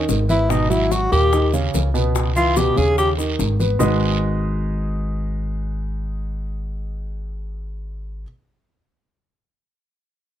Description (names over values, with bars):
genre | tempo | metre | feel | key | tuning
Afro-Cuban jazz | 145 BPM | 4/4 | straight | G# minor | A4 = 440 Hz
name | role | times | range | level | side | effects
breathy tenor saxophone | melody | 0.0-3.1 s | D#4 to G#4 | -19 LUFS | left 1 dB | plate reverb
warm grand piano | accompaniment | 0.0-8.2 s | A#2 to D#5 | -23 LUFS | right 2 dB | none
upright bass | bass | 0.0-8.2 s | G#1 to D#2 | -22 LUFS | equal | none
bongos | percussion | 0.1-3.9 s | none | -30 LUFS | left 9 dB | none
congas | percussion | 0.1-3.9 s | none | -28 LUFS | left 2 dB | none
guiro | percussion | 0.1-3.9 s | none | -32 LUFS | right 6 dB | none
maracas | percussion | 0.1-3.9 s | none | -34 LUFS | left 6 dB | none
room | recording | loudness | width
light reverb | none | -17 LUFS | side -11 dB against mid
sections
0.0-3.8 A section; 3.8-7.1 B section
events
tenor saxophone solo 0.0-3.8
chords
0.0 G#m; 0.5 G#m7; 1.3 D#aug7; 2.2 C#m7; 3.0 G#madd11; 3.8 G#m7